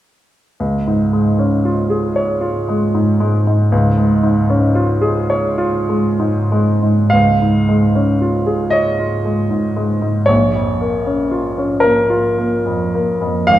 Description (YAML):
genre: classical, romantic nocturne for solo piano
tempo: 30-40 BPM (dotted quarters)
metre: 6/8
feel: rubato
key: Db major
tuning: A4 = 444 Hz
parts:
  - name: clear baby grand piano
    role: solo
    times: 0.6-13.6 s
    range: Ab1 to F5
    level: -13 LUFS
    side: equal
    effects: none
room: wet recital hall reverb, RT60 1.3 s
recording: heard from further back in the room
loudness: -13 LUFS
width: side -13 dB against mid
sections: 0.6-7.1 A section; 7.1-13.6 B section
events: none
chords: 0.6 Db; 10.3 Bbm